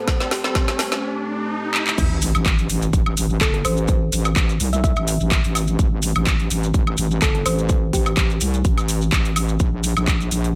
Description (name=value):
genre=bass house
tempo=126 BPM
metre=4/4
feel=swing 54% on 16ths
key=A phrygian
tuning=A4 = 436 Hz
part: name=deep dark ambient pad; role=sustained chords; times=0.0-10.6 s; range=A3 to G5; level=-38 LUFS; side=equal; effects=none
part: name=riser and sub drop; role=sound effects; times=0.0-3.9 s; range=none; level=-30 LUFS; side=equal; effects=none
part: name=deep dark ambient pad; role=texture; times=0.0-1.0, 10.4-10.6 s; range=F4 to A5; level=-38 LUFS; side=equal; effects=chorus, built-in reverb, sidechain pumping
part: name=electronic kick drum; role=drums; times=0.1-10.2 s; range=none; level=-22 LUFS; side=equal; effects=small room ambience
part: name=garage drum kit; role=drums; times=0.1-10.5 s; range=crash cymbal, handclaps, hi-hat, snare drum, woodblock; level=-26 LUFS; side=equal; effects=overdrive, small room ambience
part: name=band-passed chord stab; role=stabs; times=0.2-1.0 s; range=G3 to A4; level=-34 LUFS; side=equal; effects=none
part: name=thumb-piano-like synth pluck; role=melody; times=0.3-8.6 s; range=G4 to E5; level=-31 LUFS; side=equal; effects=chorus, tape echo
part: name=wobble bass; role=bass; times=2.0-10.5 s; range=G1 to C2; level=-23 LUFS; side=equal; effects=chorus, sidechain pumping
part: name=maracas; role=percussion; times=2.0-10.5 s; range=none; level=-32 LUFS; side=equal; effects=none
room=light reverb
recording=none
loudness=-20 LUFS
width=mono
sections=0.0-2.0 A section; 2.0-10.6 B section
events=build-up 0.0-2.0; drum fill 0.0-1.0, 1.7; riser 0.0-2.0; drop 2.0-10.6; impact 2.0-3.9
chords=0.0 Am7; 9.6 Bb